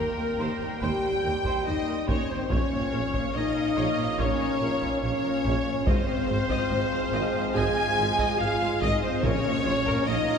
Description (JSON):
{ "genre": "cinematic, epic orchestral film score", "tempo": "71 BPM", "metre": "4/4", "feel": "straight", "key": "Bb dorian", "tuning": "A4 = 438 Hz", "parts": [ { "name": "rich symphonic violin section", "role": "melody", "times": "0.0-10.4 s", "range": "Bb4 to Ab5", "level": "-34 LUFS", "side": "left 4 dB", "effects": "none" }, { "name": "rich symphonic violin section", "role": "second line", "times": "0.0-10.4 s", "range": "Bb4 to Ab5", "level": "-33 LUFS", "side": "left 2 dB", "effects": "none" }, { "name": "clear symphonic viola section", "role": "accompaniment", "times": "0.0-10.4 s", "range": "F4 to G5", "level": "-35 LUFS", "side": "right 1 dB", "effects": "none" }, { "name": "clear trombone section", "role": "sustained chords", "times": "0.0-10.4 s", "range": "F3 to C4", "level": "-36 LUFS", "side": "right 2 dB", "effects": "none" }, { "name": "mellow French horn section", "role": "sustained chords", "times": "0.0-10.4 s", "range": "Bb3 to Ab4", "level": "-29 LUFS", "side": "left 2 dB", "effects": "none" }, { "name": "clear trumpet section", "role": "stabs", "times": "0.0-10.4 s", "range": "Bb4 to Ab5", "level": "-33 LUFS", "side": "right 1 dB", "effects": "none" }, { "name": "clear symphonic double bass section", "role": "bass", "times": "0.0-10.2 s", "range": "Ab1 to Eb2", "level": "-35 LUFS", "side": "right 2 dB", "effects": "none" }, { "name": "rich symphonic cello section", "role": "bass", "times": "0.0-10.4 s", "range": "Eb2 to Bb2", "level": "-34 LUFS", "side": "right 2 dB", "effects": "none" }, { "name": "warm tuba", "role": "bass", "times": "0.0-10.1 s", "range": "Ab1 to Eb2", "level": "-36 LUFS", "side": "right 3 dB", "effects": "none" }, { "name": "impact", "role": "sound effects", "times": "0.0-2.5 s", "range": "none", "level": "barely audible", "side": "none", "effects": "none" }, { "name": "taiko ensemble", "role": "drums", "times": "0.8-10.4 s", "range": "none", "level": "-32 LUFS", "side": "equal", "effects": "none" }, { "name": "timpani", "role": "percussion", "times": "9.2-10.4 s", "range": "Bb2", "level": "-35 LUFS", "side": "left 1 dB", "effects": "none" } ], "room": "wet church reverb, RT60 3.5 s", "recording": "recorded in a church or concert hall", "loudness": "-23 LUFS", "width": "side -6 dB against mid", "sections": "0.0-10.4 A section", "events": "impact 0.0-2.5", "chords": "0.0 Eb6; 2.5 Bbm; 5.9 Ab6; 9.2 Bbm" }